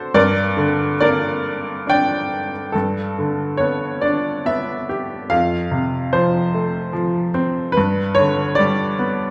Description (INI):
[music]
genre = classical, lyrical solo piano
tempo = 71 BPM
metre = 3/4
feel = uneven beats, rubato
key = unclear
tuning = A4 = 439 Hz
[part]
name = clear upright piano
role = solo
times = 0.0-9.3 s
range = F2 to G5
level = -19 LUFS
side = equal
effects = none
[sound]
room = wet recital hall reverb, RT60 1.5 s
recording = recorded in a church or concert hall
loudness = -20 LUFS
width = mono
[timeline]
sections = 0.0-2.7 A section; 2.7-9.3 B section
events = none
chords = 0.1 Gm; 2.7 Gadd9; 5.3 F; 7.8 G